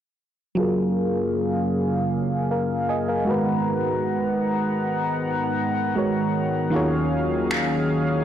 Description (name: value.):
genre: contemporary R&B.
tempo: 78 BPM.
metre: 4/4.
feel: straight.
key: F# major.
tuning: A4 = 442 Hz.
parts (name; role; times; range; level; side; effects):
FM electric piano; accompaniment; 0.6-8.2 s; D#3 to G#5; -23 LUFS; right 1 dB; chorus, low-pass filter.
chorused pulse-width pad; sustained chords; 0.6-8.2 s; D#2 to A#5; -24 LUFS; left 1 dB; low-pass filter.
electronic finger snaps; drums; 7.5-7.7 s; none; -28 LUFS; equal; soft clipping on snare.
room: moderate lush hall reverb, RT60 1.7 s, digital ambience.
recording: blown-out, overdriven recording, overdrive.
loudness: -21 LUFS.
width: side -10 dB against mid.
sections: 0.6-8.2 A section.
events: filter sweep 0.6-8.2.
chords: 0.6 F#maj9; 3.3 G#m9; 6.7 D#m11.